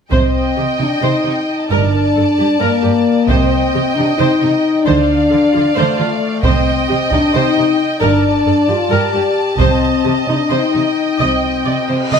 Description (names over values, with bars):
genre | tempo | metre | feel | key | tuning
cinematic, epic orchestral film score | 266 BPM (eighths) | 7/8 | straight | C dorian | A4 = 441 Hz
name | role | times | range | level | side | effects
warm symphonic violin section | melody | 0.1-12.2 s | F5 to A5 | -24 LUFS | left 2 dB | none
warm symphonic violin section | second line | 0.1-12.2 s | D5 to Eb5 | -20 LUFS | right 1 dB | none
warm symphonic viola section | accompaniment | 0.1-12.2 s | Eb4 to Eb5 | -21 LUFS | right 2 dB | none
warm French horn section | sustained chords | 0.1-12.1 s | A3 to G4 | -15 LUFS | left 4 dB | none
warm studio double bass section | bass | 0.1-11.4 s | G1 to D2 | -20 LUFS | right 5 dB | none
warm symphonic cello section | bass | 0.1-12.2 s | G2 to D3 | -21 LUFS | right 5 dB | none
solo taiko drums | drums | 0.1-10.5 s | none | -18 LUFS | right 1 dB | none
cymbal swell | sound effects | 11.6-12.2 s | none | -29 LUFS | right 3 dB | none
room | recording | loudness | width
moderate recital hall reverb, RT60 1.6 s | none | -12 LUFS | side -6 dB against mid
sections
0.1-12.2 A section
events
cymbal swell 11.6-12.2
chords
0.1 Cm; 1.7 Gmadd9; 3.3 Cm; 4.9 Dm7; 6.4 Cm; 8.0 Gmadd9; 9.6 Cm